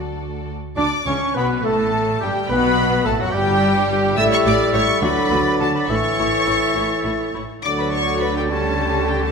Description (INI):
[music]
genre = quick classical-period movement for symphony orchestra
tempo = 70 BPM (dotted quarters)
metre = 6/8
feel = uneven beats, rubato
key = D major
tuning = A4 = 440 Hz
[part]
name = warm studio violin section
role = melody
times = 0.0-9.3 s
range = D5 to E6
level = -24 LUFS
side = left 2 dB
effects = none
[part]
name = clear studio violin section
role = second line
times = 0.0-9.3 s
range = F#4 to E5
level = -26 LUFS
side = left 2 dB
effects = none
[part]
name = rich studio viola section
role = accompaniment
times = 0.0-9.3 s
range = F#3 to G4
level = -27 LUFS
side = right 2 dB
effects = none
[part]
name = rich studio double bass section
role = bass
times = 0.0-9.3 s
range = G1 to D2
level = -27 LUFS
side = right 2 dB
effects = none
[part]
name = dark clarinet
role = second line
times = 0.8-9.3 s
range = F#4 to D5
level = -28 LUFS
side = right 1 dB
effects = none
[part]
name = mellow hollow silver concert flute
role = second line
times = 0.8-9.3 s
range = F#5 to A6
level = -27 LUFS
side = left 1 dB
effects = none
[part]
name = warm oboe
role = second line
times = 0.8-9.3 s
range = F#4 to E5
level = -27 LUFS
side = equal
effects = none
[part]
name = warm bassoon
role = accompaniment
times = 0.8-9.3 s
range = E3 to D4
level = -26 LUFS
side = right 1 dB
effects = none
[part]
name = warm French horn section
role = sustained chords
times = 0.8-9.3 s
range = E3 to E4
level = -25 LUFS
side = left 3 dB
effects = none
[part]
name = warm studio cello section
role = bass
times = 0.8-9.3 s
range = F#2 to D3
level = -27 LUFS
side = right 2 dB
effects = none
[sound]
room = wet scoring stage reverb, RT60 1.7 s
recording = minimal, uncompressed stereo recording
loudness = -16 LUFS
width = side -5 dB against mid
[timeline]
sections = 0.8-9.3 A section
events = none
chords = 0.0 D; 0.8 Bmadd9; 1.7 Gsus2; 2.5 F#madd11; 3.3 N.C.; 4.2 A5; 5.0 D; 5.9 A; 7.6 D; 8.5 A7/D